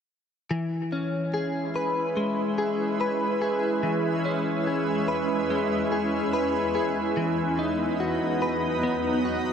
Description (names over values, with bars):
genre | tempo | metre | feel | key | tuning
dream pop | 72 BPM | 4/4 | straight | E major | A4 = 441 Hz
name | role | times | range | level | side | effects
shimmering ambient pad | sustained chords | 1.3-9.5 s | E2 to E5 | -28 LUFS | right 3 dB | chorus, built-in reverb
direct-recorded clean electric guitar | arpeggios | 0.5-9.5 s | E3 to B4 | -26 LUFS | left 2 dB | analog chorus, tape echo
room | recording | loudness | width
wet huge ambient reverb, RT60 6.3 s | none | -24 LUFS | side -7 dB against mid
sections
0.5-9.5 A section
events
none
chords
0.5 E6; 7.2 B/E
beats
| 0.50 1.34 2.17 3.00 | 3.84 4.67 5.50 6.34 | 7.17 8.00 8.84